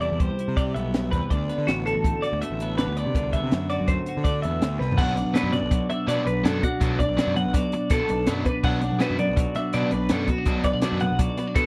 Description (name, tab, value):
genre	math rock and midwest emo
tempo	164 BPM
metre	5/4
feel	straight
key	unclear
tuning	A4 = 440 Hz
part	twelve-string electric guitar	accompaniment	0.0-11.7 s	A2 to A4	-32 LUFS	equal	vibrato effect
part	twelve-string electric guitar	arpeggios	0.0-11.7 s	F#4 to F#5	-30 LUFS	equal	lush chorus
part	fuzz picked electric bass	bass	0.0-11.6 s	A1 to D3	-30 LUFS	equal	overdrive
part	compact cocktail drum kit	drums	0.0-11.6 s	crash cymbal, hi-hat, kick drum, snare drum, toms	-27 LUFS	equal	none
part	biting overdriven guitar	riff	5.0-11.7 s	B2 to D4	-32 LUFS	equal	none
room	little or no reverb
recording	dry, close 1970s-style studio recording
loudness	-24 LUFS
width	mono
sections	0.0-5.0 A section; 5.0-11.7 B section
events	drum fill 4.8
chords	0.0 Cmaj7; 1.3 D13; 5.0 Bm7